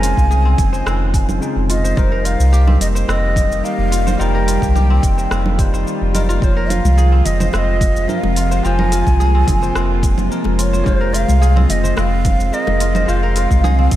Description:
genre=organic downtempo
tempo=108 BPM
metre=4/4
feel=straight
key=F minor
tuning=A4 = 441 Hz
part: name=breathy mellow ney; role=melody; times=0.0-14.0 s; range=C5 to Ab5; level=-22 LUFS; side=equal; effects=tape echo, slapback echo
part: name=bell-like tine electric piano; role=accompaniment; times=0.0-14.0 s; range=Db3 to C5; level=-25 LUFS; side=left 4 dB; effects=sidechain pumping, digital delay, slapback echo
part: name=bowed-like drone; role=sustained chords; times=0.0-14.0 s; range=C3 to C5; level=-24 LUFS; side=right 1 dB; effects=built-in reverb, sidechain pumping
part: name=kora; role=arpeggios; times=0.0-14.0 s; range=C4 to C5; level=-27 LUFS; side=equal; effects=digital delay, slapback echo
part: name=warm sub bass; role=bass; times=0.0-14.0 s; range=F1 to C2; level=-15 LUFS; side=equal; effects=sidechain pumping
part: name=deep house drum kit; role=drums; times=0.0-14.0 s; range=congas, hi-hat, rim click, shaker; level=-25 LUFS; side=right 3 dB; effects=none
part: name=electronic kick drum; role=drums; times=0.2-14.0 s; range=none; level=-17 LUFS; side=equal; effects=none
part: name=bronze singing bowl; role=texture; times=6.4-14.0 s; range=F4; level=-32 LUFS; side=right 4 dB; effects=none
part: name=congas and bongos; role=percussion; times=6.9-14.0 s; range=none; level=-28 LUFS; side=left 3 dB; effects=none
room=light reverb, studio ambience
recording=none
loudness=-13 LUFS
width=side -13 dB against mid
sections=0.0-14.0 A section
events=none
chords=0.0 Bbm11/F; 2.0 Eb/F; 6.4 Fmadd11; 10.9 Ab6/F

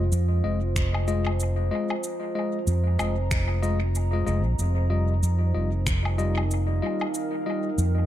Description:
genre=ambient dub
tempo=94 BPM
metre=4/4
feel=swing 58% on 16ths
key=F minor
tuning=A4 = 441 Hz
part: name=deep dark ambient pad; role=sustained chords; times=0.0-8.1 s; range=Eb4 to Bb5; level=-32 LUFS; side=right 2 dB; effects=chorus, built-in reverb
part: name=tine electric piano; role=stabs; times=0.0-7.7 s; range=G3 to Eb5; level=-30 LUFS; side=left 4 dB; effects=dub echo
part: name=fingered electric bass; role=bass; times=0.0-8.1 s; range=F1 to F2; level=-23 LUFS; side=equal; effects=tube saturation
part: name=electronic cabasa, finger snaps and woodblock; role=drums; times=0.1-7.9 s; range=none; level=-34 LUFS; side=left 1 dB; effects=dub echo
part: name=electronic kick drum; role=drums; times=0.8-6.0 s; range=none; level=-26 LUFS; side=equal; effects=none
room=little or no reverb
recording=echo-heavy mix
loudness=-23 LUFS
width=side -12 dB against mid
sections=0.0-8.1 A section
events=none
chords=0.0 Fm7; 4.6 Ebadd9/F

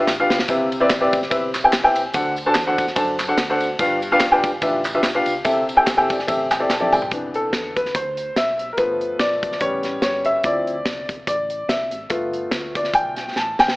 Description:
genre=uptempo gospel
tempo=144 BPM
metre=4/4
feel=swing 55% on 8ths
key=C major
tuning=A4 = 440 Hz
part: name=warm upright piano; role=accompaniment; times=0.0-13.8 s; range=G2 to A5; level=-18 LUFS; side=equal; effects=none
part: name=hollow-body short-scale fingered electric bass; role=bass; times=0.1-13.7 s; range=F1 to F#2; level=-38 LUFS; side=equal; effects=none
part: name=modern studio drum kit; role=drums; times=0.1-13.8 s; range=hi-hat, kick drum, ride cymbal, snare drum, toms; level=-25 LUFS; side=equal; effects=none
part: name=handclaps and tambourine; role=percussion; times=0.1-7.0 s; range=none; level=-29 LUFS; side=right 1 dB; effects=none
room=moderate scoring stage reverb, RT60 2.1 s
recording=AM radio sound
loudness=-17 LUFS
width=side -22 dB against mid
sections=0.0-7.1 A section; 7.1-13.8 B section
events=drum fill 0.1-0.5, 6.7-7.1, 13.4-13.8; upright piano fill 5.9-7.1; upright piano solo 7.1-13.8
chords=0.5 Cmaj7; 2.1 D7; 3.8 G7; 5.5 C6; 7.1 Cmaj9; 8.8 G9; 9.6 A7; 10.4 Dm7; 12.1 G9

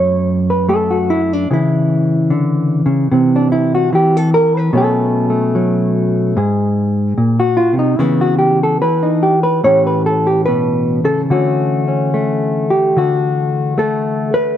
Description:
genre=solo jazz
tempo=74 BPM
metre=4/4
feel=swing 68% on 8ths, rubato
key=D major from 11.3 s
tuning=A4 = 436 Hz
part: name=hollow-body jazz guitar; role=solo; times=0.0-14.6 s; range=F#2 to C#5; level=-12 LUFS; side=equal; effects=none
room=moderate spring reverb, RT60 2.6 s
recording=none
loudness=-12 LUFS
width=side -10 dB against mid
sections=0.0-11.3 A section; 11.3-14.6 B section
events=hollow-body jazz guitar solo 0.0-11.3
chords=0.0 F#m; 1.5 C#m; 3.1 C; 4.7 Bsus2; 6.3 G#; 8.0 C#m9b5; 9.6 A9; 11.3 Dmaj9

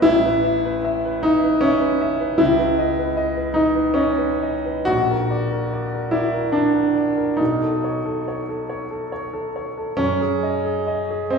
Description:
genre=classical, impressionist solo piano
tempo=63-79 BPM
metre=3/4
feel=rubato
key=unclear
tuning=A4 = 443 Hz
part: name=bright grand piano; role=solo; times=0.0-11.4 s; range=A1 to E5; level=-18 LUFS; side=equal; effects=none
room=wet recital hall reverb, RT60 1.6 s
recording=recorded in a church or concert hall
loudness=-18 LUFS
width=side -5 dB against mid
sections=0.0-11.4 A section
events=none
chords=0.1 Aadd9; 2.4 C#m9; 4.9 Bbaug; 7.4 B9; 10.0 Gbsus2

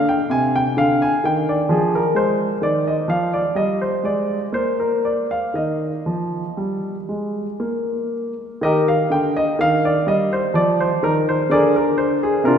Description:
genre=classical, baroque-style suite movement for grand piano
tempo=58-66 BPM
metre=3/4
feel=rubato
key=Eb major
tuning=A4 = 439 Hz
part: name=warm grand piano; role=solo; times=0.0-12.6 s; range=C3 to Ab5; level=-17 LUFS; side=equal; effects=none
room=wet church reverb, RT60 3.0 s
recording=recorded in a church or concert hall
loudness=-17 LUFS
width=side -8 dB against mid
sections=0.0-8.6 A section; 8.6-12.6 B section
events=none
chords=0.0 Cmadd9; 2.6 Ebsus2; 3.5 Abmaj7#11/G; 4.5 N.C.; 5.5 Eb; 11.5 Bb7/D

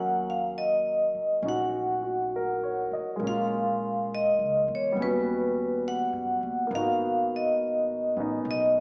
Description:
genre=jazz ballad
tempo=68 BPM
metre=4/4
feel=swing 68% on 8ths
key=Eb minor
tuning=A4 = 440 Hz
part: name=vibraphone with medium hard mallets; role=melody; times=0.0-8.8 s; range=B4 to Gb5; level=-26 LUFS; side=equal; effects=none
part: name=warm baby grand piano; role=accompaniment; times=0.0-8.8 s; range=Gb3 to Eb5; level=-30 LUFS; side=equal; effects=none
part: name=upright bass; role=bass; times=0.0-8.8 s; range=Ab1 to F#2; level=-39 LUFS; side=equal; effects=none
room=wet recital hall reverb, RT60 1.7 s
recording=recorded in a church or concert hall, small speaker sound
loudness=-24 LUFS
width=side -34 dB against mid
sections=0.0-8.8 A section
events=none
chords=0.0 Ebm7; 3.2 Bbm7; 5.0 Eb7alt; 6.7 Abm7

